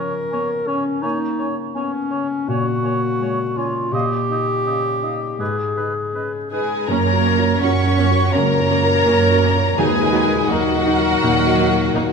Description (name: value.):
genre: cinematic, emotional film score for orchestra.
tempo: 83 BPM.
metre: 4/4.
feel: rubato.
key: unclear.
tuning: A4 = 443 Hz.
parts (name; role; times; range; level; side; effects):
mellow clarinet; second line; 0.0-12.1 s; C#4 to C#5; -22 LUFS; left 1 dB; none.
mellow flute section; second line; 0.0-12.1 s; A#4 to G#5; -27 LUFS; right 1 dB; none.
mellow oboe; second line; 0.0-6.7 s; B4 to D#5; -28 LUFS; right 2 dB; none.
felt-muted upright piano; accompaniment; 0.0-12.1 s; C#2 to D#5; -24 LUFS; left 2 dB; none.
dark chamber violin section; melody; 6.5-12.1 s; F#5 to C#6; -23 LUFS; left 4 dB; none.
rich studio violin section; second line; 6.5-12.1 s; F#4 to C#5; -24 LUFS; right 1 dB; none.
clear studio cello section; bass; 6.5-12.1 s; F#3 to C#4; -24 LUFS; right 5 dB; none.
warm studio viola section; accompaniment; 6.9-12.0 s; F#3 to D#4; -26 LUFS; right 2 dB; none.
mellow French horn section; sustained chords; 6.9-12.1 s; A#2 to D#4; -24 LUFS; left 4 dB; none.
rich symphonic double bass section; bass; 6.9-12.1 s; D#2 to F#2; -21 LUFS; right 5 dB; none.
timpani; percussion; 9.8-10.8 s; D#3; -27 LUFS; right 2 dB; none.
room: moderate scoring stage reverb, RT60 1.9 s.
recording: none.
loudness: -16 LUFS.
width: side -5 dB against mid.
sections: 0.0-6.9 A section; 6.9-12.1 B section.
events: none.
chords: 0.0 A#m; 1.0 F#add9/A#; 3.9 D#add9/A#; 5.4 G#m; 6.9 F#; 9.8 D#m.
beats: 0.33 | 1.04 1.75 2.49 3.21 | 3.94 4.67 5.40 6.15 | 6.89 7.62 8.35 9.07 | 9.79 10.51 11.23 11.96.